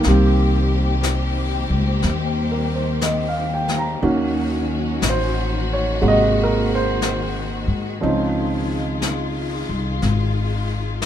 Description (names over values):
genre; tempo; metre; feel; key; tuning
jazz ballad; 60 BPM; 4/4; swing 66% on 8ths; unclear; A4 = 440 Hz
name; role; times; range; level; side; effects
warm grand piano; accompaniment; 0.0-11.1 s; C3 to Bb5; -22 LUFS; right 3 dB; none
warm symphonic string section; sustained chords; 0.0-11.1 s; Eb3 to G4; -26 LUFS; left 3 dB; none
upright bass; bass; 0.0-11.1 s; Ab1 to Ab2; -21 LUFS; left 1 dB; none
jazz brush drum kit; drums; 0.0-11.1 s; brushed snare drum, hi-hat, snare drum; -28 LUFS; left 4 dB; none
room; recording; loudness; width
light reverb; minimal, uncompressed stereo recording; -18 LUFS; side -10 dB against mid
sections
0.0-11.1 A section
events
none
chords
0.1 Cm7; 4.0 Ebm7; 6.0 Ab9; 8.0 Dbmaj9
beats
| 0.05 1.04 2.03 3.03 | 4.03 5.03 6.03 7.03 | 8.03 9.03 10.03 11.03